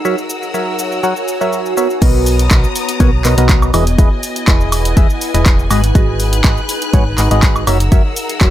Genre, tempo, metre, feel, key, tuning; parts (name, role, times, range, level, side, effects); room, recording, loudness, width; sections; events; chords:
piano house; 122 BPM; 4/4; swing 53% on 16ths; B major; A4 = 440 Hz
clear symphonic string section; sustained chords; 0.0-8.5 s; B3 to F#6; -24 LUFS; left 2 dB; sidechain pumping
ethereal airy pad; texture; 0.0-8.5 s; B3 to A#5; -22 LUFS; right 1 dB; ensemble chorus, built-in reverb, sidechain pumping
percussive organ stab; riff; 0.1-8.5 s; E3 to F#5; -19 LUFS; equal; chorus, phaser, vintage 12-bit sampler grit, sidechain pumping, digital delay
punchy analog drum machine; drums; 0.1-8.5 s; cabasa, crash cymbal, handclaps, hi-hat, woodblock; -19 LUFS; equal
solid FM bass; bass; 2.0-8.5 s; E1 to B1; -15 LUFS; equal; sidechain pumping
electronic kick drum; drums; 2.0-8.5 s; -11 LUFS; equal
digital ambience; -11 LUFS; side -13 dB against mid
0.0-2.0 A section; 2.0-8.5 B section
filter sweep on synth stab 0.0-2.0; drop 2.0-8.5
0.0 F#7; 2.0 Bmaj7; 3.7 Emaj7; 5.7 G#m7; 7.7 F#7